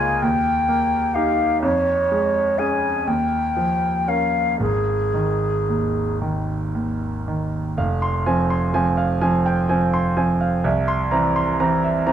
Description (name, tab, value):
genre	classical, romantic duo for flute and grand piano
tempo	37-44 BPM (dotted quarters)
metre	6/8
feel	rubato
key	F minor from 7.8 s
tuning	A4 = 440 Hz
part	mellow concert flute	melody	0.0-6.2 s	Ab4 to Ab5	-20 LUFS	left 2 dB	none
part	bright concert grand piano	accompaniment	0.0-12.1 s	F1 to C6	-20 LUFS	right 2 dB	none
room	moderate recital hall reverb, RT60 1.3 s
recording	close, detailed microphones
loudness	-18 LUFS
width	side -10 dB against mid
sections	0.0-7.8 A section; 7.8-12.1 B section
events	none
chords	0.2 Eb; 1.6 Db/F; 3.1 Eb9; 4.6 Ab5; 7.8 Fm; 10.7 C7